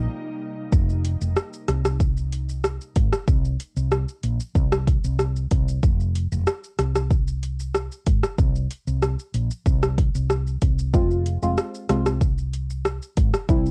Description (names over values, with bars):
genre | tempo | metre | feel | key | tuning
dancehall | 94 BPM | 4/4 | straight | F minor | A4 = 440 Hz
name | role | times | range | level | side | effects
ethereal airy pad | sustained chords | 0.0-0.7 s | C3 to Eb4 | -38 LUFS | equal | ensemble chorus, built-in reverb, sidechain pumping
woody fretless electric bass | bass | 0.0-13.7 s | F1 to C2 | -26 LUFS | equal | none
deep house drum kit | drums | 0.7-13.7 s | hi-hat, kick drum, rim click, shaker | -24 LUFS | equal | overdrive, cassette tape
deep mellow chord stab | accompaniment | 10.9-13.7 s | G3 to F4 | -27 LUFS | equal | chorus, phaser
room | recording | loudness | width
little or no reverb | home recording on cassette | -23 LUFS | mono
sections
0.7-13.7 A section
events
break 0.1-0.7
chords
0.0 Cm7; 0.7 F5; 3.3 N.C.; 5.8 F5; 8.4 N.C.; 10.9 Fm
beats
0.09 | 0.72 1.36 2.00 2.64 | 3.28 3.92 4.55 5.19 | 5.83 6.47 7.11 7.75 | 8.38 9.02 9.66 10.30 | 10.94 11.57 12.21 12.85 | 13.49